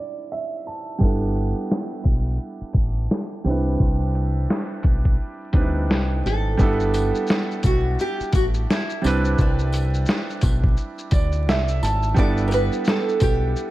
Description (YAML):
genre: lo-fi hip hop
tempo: 86 BPM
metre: 4/4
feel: swing 58% on 16ths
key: G major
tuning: A4 = 440 Hz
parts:
  - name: bright upright piano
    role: accompaniment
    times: 0.0-13.7 s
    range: G3 to A5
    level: -26 LUFS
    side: right 3 dB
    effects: none
  - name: deep dub fingered electric bass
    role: bass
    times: 1.0-13.5 s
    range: G1 to D2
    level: -22 LUFS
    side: equal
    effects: none
  - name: lo-fi sampler-style drum kit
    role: drums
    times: 1.0-13.7 s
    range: hi-hat, kick drum, shaker, snare drum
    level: -21 LUFS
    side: equal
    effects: none
  - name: nylon-string guitar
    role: melody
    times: 6.3-13.7 s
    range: D4 to D5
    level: -25 LUFS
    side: right 1 dB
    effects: wide subtle chorus, ping-pong delay
  - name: tambourine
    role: percussion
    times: 6.9-13.4 s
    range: none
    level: -44 LUFS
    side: left 6 dB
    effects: none
room: light reverb, studio reverb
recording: vinyl crackle, low-pass filter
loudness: -19 LUFS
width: side -16 dB against mid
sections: 0.0-6.6 A section; 6.6-13.7 B section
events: filter sweep 0.0-6.6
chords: 0.0 Cmaj9; 1.0 G69; 3.5 Cmaj9; 6.6 G69; 9.0 Cmaj9; 12.2 G69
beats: 0.31 | 1.01 1.71 2.40 3.10 | 3.80 4.50 5.20 5.89 | 6.59 7.29 7.99 8.68 | 9.38 10.08 10.78 11.47 | 12.17 12.87 13.57